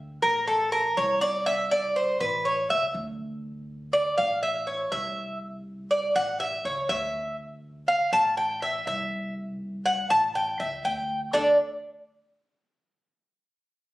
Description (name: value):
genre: latin, Cuban son and guajira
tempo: 122 BPM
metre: 4/4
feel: straight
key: unclear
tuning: A4 = 439 Hz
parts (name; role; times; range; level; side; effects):
- upright bass; bass; 0.0-11.6 s; A1 to D2; -39 LUFS; equal; none
- Cuban tres; arpeggios; 0.2-11.6 s; D4 to A5; -23 LUFS; equal; none
room: moderate studio reverb, RT60 0.7 s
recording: recorded on a phone in the room, studio reverb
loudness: -24 LUFS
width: side -17 dB against mid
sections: 0.0-11.3 A section; 11.3-13.3 B section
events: Cuban tres solo 0.0-11.3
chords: 0.5 Amadd11; 2.5 A; 3.4 D5; 4.4 Amadd11; 6.4 A; 7.4 D5; 8.4 Am6; 10.4 A; 11.3 D5